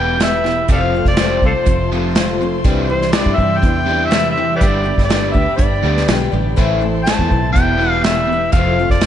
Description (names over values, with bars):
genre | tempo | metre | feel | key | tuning
folk rock and heartland rock | 122 BPM | 4/4 | straight | unclear | A4 = 441 Hz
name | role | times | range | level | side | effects
overdriven harmonica | melody | 0.0-9.1 s | F4 to A5 | -19 LUFS | equal | slapback echo, analog delay
picked old ladder-braced acoustic guitar | accompaniment | 0.0-9.1 s | E2 to G4 | -22 LUFS | left 5 dB | slapback echo
rich studio string section | sustained chords | 0.0-9.1 s | D4 to C6 | -30 LUFS | equal | none
overdriven electric guitar | riff | 0.0-9.1 s | E2 to A3 | -22 LUFS | right 1 dB | slapback echo
fingered electric bass | bass | 0.0-9.1 s | E1 to G2 | -20 LUFS | right 1 dB | none
unplugged drum kit | drums | 0.2-9.1 s | hi-hat, kick drum, snare drum | -17 LUFS | equal | none
room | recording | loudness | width
moderate lush hall reverb, RT60 1.9 s, small room ambience | big arena sound, nothing above 10.6 kHz | -13 LUFS | side -10 dB against mid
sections
0.0-9.1 A section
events
none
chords
0.0 Em; 0.7 F; 2.6 Cadd9; 4.6 G; 6.6 Am; 7.6 Em; 8.5 F